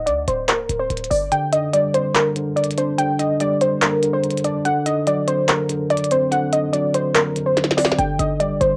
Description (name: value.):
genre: hip hop, trap.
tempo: 144 BPM.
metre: 4/4.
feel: half-time.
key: G harmonic minor.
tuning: A4 = 440 Hz.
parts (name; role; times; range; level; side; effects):
warbly dusty pluck; melody; 0.0-8.8 s; Bb4 to G5; -22 LUFS; equal; chorus, low-pass filter, cassette tape.
short 808-style bass; bass; 0.0-1.3, 8.0-8.8 s; C1 to D2; -29 LUFS; equal; none.
minimal click drum kit; drums; 0.1-8.7 s; handclaps, hi-hat, snare drum; -24 LUFS; equal; cassette tape.
tine electric piano; accompaniment; 1.3-8.8 s; D3 to D4; -25 LUFS; equal; low-pass filter, cassette tape.
room: moderate studio ambience, RT60 0.5 s.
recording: home recording on cassette.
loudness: -20 LUFS.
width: mono.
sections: 0.0-8.8 A section.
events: filter sweep 0.0-1.3; kick muted 1.3-8.0; drum fill 7.6-8.0.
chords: 0.0 C7sus2; 1.3 Gm; 4.7 D7; 8.0 G5.